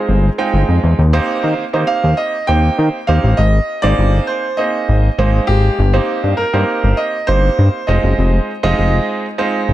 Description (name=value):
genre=dance-pop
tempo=100 BPM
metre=4/4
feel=straight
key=Eb major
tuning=A4 = 442 Hz
part: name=warm concert grand piano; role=melody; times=0.0-9.7 s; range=G4 to G5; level=-20 LUFS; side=right 1 dB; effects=none
part: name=clear concert grand piano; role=accompaniment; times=0.0-9.7 s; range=Ab3 to G5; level=-19 LUFS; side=right 3 dB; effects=none
part: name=chorused synth bass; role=bass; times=0.1-9.7 s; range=F1 to Eb3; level=-13 LUFS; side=equal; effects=none
room=light reverb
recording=none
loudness=-12 LUFS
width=side -14 dB against mid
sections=0.0-9.7 A section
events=none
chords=0.0 Fm7; 1.0 Eb6; 3.4 Abadd9; 5.8 Eb6/G; 7.9 Fm7